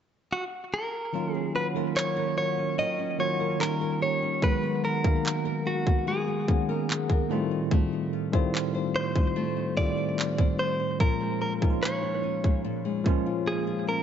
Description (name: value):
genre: contemporary R&B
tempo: 73 BPM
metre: 4/4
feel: straight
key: Eb minor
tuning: A4 = 436 Hz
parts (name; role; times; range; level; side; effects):
- direct-recorded clean electric guitar; melody; 0.3-14.0 s; Gb4 to Eb5; -30 LUFS; right 1 dB; spring reverb, dub echo
- bell-like tine electric piano; accompaniment; 1.1-14.0 s; A2 to F5; -29 LUFS; right 1 dB; slow stereo tremolo
- nylon-string guitar; arpeggios; 1.1-14.0 s; Bb2 to C5; -34 LUFS; left 6 dB; dub echo
- trap drum kit; drums; 2.0-13.2 s; handclaps, kick drum; -25 LUFS; equal; none
room: light reverb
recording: echo-heavy mix, nothing above 7.8 kHz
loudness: -25 LUFS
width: side -8 dB against mid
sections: 0.0-1.1 A section; 1.1-14.0 B section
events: silent gap 13.5-14.0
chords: 0.0 N.C.; 1.1 Ebm7; 3.6 Eb7; 4.4 Abm9; 7.3 F7/A; 11.0 Bbm7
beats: 0.32 | 1.14 1.96 2.78 3.60 | 4.43 5.25 6.07 6.89 | 7.71 8.54 9.36 10.18 | 11.00 11.82 12.64 13.47